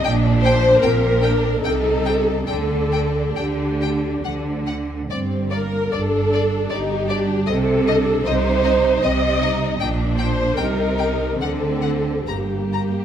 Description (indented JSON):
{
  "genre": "classical, slow romantic movement for string orchestra",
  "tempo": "66-79 BPM",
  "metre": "3/4",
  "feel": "rubato",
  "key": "G minor",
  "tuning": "A4 = 440 Hz",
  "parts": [
    { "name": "warm studio violin section", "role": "melody", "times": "0.0-12.8 s", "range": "D5 to Bb5", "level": "-29 LUFS", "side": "left 7 dB", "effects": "none" },
    { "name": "warm studio violin section", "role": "second line", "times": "0.0-13.0 s", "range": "Bb3 to Eb4", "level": "-26 LUFS", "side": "left 3 dB", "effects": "none" },
    { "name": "warm studio viola section", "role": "accompaniment", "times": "0.0-13.0 s", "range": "G4 to Eb5", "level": "-21 LUFS", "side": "equal", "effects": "none" },
    { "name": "rich studio cello section", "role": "bass", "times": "0.0-13.0 s", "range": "G2 to D3", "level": "-24 LUFS", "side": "right 3 dB", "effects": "none" },
    { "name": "rich studio double bass section", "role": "bass", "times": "0.0-13.0 s", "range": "G1 to D2", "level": "-25 LUFS", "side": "right 2 dB", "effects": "none" }
  ],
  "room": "moderate concert hall reverb, RT60 1.9 s",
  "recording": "none",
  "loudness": "-17 LUFS",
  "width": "side -9 dB against mid",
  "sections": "0.0-13.0 A section",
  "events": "none",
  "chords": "0.0 Gm/Bb (rootless); 1.6 Adim/C; 2.5 G5/D; 4.2 N.C.; 5.1 G5; 7.5 Adim/C; 9.8 Gm/Bb; 10.6 Cm7; 11.4 D7(no3); 12.3 Gm"
}